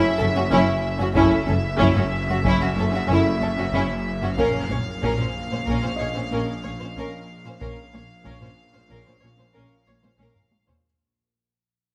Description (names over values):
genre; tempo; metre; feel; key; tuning
cinematic, suspense film score; 93 BPM; 5/4; straight; unclear; A4 = 440 Hz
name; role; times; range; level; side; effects
warm studio violin section; melody; 0.0-10.6 s; E5 to F5; -32 LUFS; equal; none
warm studio violin section; second line; 0.0-10.7 s; E4 to Db5; -29 LUFS; equal; none
mellow French horn section; sustained chords; 0.0-9.8 s; A3 to E4; -28 LUFS; equal; none
bowed-like drone; drone; 0.1-10.8 s; F#1 to Bb1; -31 LUFS; equal; built-in reverb
felt-muted upright piano; texture; 0.0-10.9 s; Eb5; -41 LUFS; equal; none
rich studio viola section; accompaniment; 0.2-10.7 s; C#4; -30 LUFS; equal; none
dark studio double bass section; bass; 0.2-10.2 s; F#1 to Bb1; -30 LUFS; equal; none
warm studio cello section; bass; 0.2-10.7 s; F#2 to Bb2; -31 LUFS; equal; none
taiko ensemble; drums; 1.2-11.0 s; none; -34 LUFS; equal; none
room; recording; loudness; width
light reverb; close, detailed microphones; -22 LUFS; mono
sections
0.0-10.8 A section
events
fade-out 0.0-10.8; drum fill 10.0-10.8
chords
0.0 F#m7; 4.4 Bbm